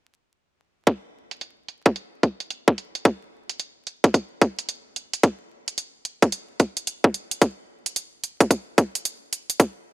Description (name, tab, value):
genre	glitch hop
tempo	110 BPM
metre	4/4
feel	swing 63% on 16ths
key	none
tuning	none
part	electronic hi-hat	drums	0.9-9.7 s	none	-28 LUFS	right 4 dB	overdrive, low-pass filter on hats
part	electronic kick drum	drums	0.9-9.7 s	none	-16 LUFS	equal	overdrive, high-pass filter on kick
room	little or no reverb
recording	vinyl crackle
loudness	-21 LUFS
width	side -17 dB against mid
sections	0.9-9.9 A section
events	none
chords	none